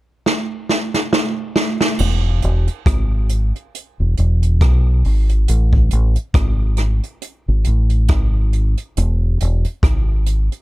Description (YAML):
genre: lovers rock reggae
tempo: 69 BPM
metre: 4/4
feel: swing 57% on 16ths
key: E major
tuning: A4 = 441 Hz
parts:
  - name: jazz brush drum kit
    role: drums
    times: 0.3-10.6 s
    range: crash cymbal, hi-hat, kick drum, rim click, snare drum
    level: -18 LUFS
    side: right 1 dB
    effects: none
  - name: deep dub fingered electric bass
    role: bass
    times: 2.0-10.5 s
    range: E1 to B1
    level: -15 LUFS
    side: equal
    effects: none
room: little or no reverb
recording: dark, warm production, faint mains hum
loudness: -15 LUFS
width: side -18 dB against mid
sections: 0.0-2.0 A section; 2.0-10.6 B section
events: drum fill 0.2-2.0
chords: none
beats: 0.25 1.12 | 1.99 2.86 3.73 4.61 | 5.48 6.35 7.22 8.09 | 8.96 9.83